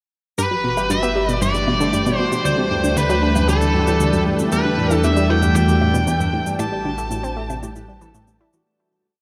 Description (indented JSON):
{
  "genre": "ambient, sequencer-driven space music",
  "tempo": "116 BPM",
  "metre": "4/4",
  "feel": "straight",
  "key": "G major",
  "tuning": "A4 = 439 Hz",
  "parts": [
    { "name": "smooth overdriven lead guitar", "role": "melody", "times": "0.4-8.4 s", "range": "A4 to A5", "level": "-24 LUFS", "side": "equal", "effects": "tape echo" },
    { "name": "phased analog pad", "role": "sustained chords", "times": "0.4-8.7 s", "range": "E3 to D5", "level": "-25 LUFS", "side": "equal", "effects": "phaser, chorus" },
    { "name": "Celtic harp", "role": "arpeggios", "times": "0.4-9.2 s", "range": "D4 to D5", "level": "-31 LUFS", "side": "equal", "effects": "tape echo" },
    { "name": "analog pluck", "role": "riff", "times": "0.4-8.6 s", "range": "D2 to E4", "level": "-25 LUFS", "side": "equal", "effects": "chorus, tape echo" },
    { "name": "round analog bass", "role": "bass", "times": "0.4-8.6 s", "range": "G1 to E2", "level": "-26 LUFS", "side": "equal", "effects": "none" },
    { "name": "cabasa and woodblock", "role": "percussion", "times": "0.4-8.6 s", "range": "none", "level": "-36 LUFS", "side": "equal", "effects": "none" },
    { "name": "wind-like tuned noise texture", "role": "texture", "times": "1.6-8.7 s", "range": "G5", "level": "-38 LUFS", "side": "equal", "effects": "none" }
  ],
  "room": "wet huge ambient reverb, RT60 7.2 s",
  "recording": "none",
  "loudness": "-18 LUFS",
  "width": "mono",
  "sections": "0.4-8.7 A section",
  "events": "fade-out 5.9-8.7",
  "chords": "0.4 G; 2.5 Dsus4; 4.5 Em; 6.6 Am7",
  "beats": "| 0.38 0.90 1.42 1.94 | 2.45 2.97 3.49 4.00 | 4.52 5.04 5.56 6.07 | 6.59 7.11 7.62 8.14"
}